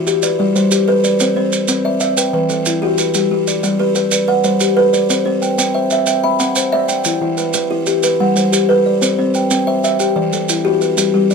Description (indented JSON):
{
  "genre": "southern african traditional, mbira-style interlocking cycle",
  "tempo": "123 BPM (dotted quarters)",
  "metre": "12/8",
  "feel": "straight",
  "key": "G major",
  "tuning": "A4 = 440 Hz",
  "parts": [
    { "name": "buzzing kalimba", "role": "arpeggios", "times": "0.0-11.3 s", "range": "E3 to G5", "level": "-18 LUFS", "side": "right 4 dB", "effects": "none" },
    { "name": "kalimba", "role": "arpeggios", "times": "0.0-11.3 s", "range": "E3 to B5", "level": "-15 LUFS", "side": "left 4 dB", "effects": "none" },
    { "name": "maracas", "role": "percussion", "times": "0.1-11.3 s", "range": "none", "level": "-20 LUFS", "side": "right 7 dB", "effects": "none" }
  ],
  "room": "moderate studio ambience, RT60 0.5 s",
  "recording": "none",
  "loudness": "-13 LUFS",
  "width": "side -5 dB against mid",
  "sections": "0.0-3.1 A section; 3.1-11.3 B section",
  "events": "none",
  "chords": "0.2 G; 1.2 C; 2.2 Em; 3.1 G; 5.1 C; 7.1 Em; 8.0 G; 9.0 C; 10.0 Em"
}